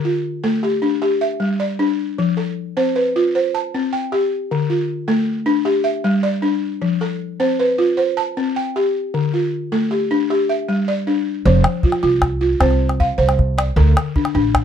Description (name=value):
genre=west african traditional, West African string and xylophone music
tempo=104 BPM (dotted quarters)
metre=12/8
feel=straight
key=F lydian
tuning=A4 = 442 Hz
part: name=balafon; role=arpeggios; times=0.0-14.6 s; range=D3 to A5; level=-17 LUFS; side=left 1 dB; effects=none
part: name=upright bass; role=bass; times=11.5-14.6 s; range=F1 to D2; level=-17 LUFS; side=right 1 dB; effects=none
part: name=calabash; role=percussion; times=11.5-14.6 s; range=none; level=-18 LUFS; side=left 1 dB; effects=none
room=little or no reverb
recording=dark, warm production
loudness=-16 LUFS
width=side -8 dB against mid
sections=0.0-11.5 A section; 11.5-14.6 B section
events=none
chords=0.0 Dm; 1.0 G5; 2.2 F; 3.3 C5; 4.5 Dm; 5.7 G5; 6.8 F; 8.0 C5; 9.1 Dm; 10.3 G5; 11.5 F5; 12.6 Csus24; 13.8 D5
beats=0.44 1.02 1.60 | 2.18 2.76 3.34 3.92 | 4.50 5.08 5.66 6.24 | 6.82 7.40 7.98 8.56 | 9.14 9.72 10.30 10.88 | 11.46 12.04 12.61 13.19 | 13.77 14.34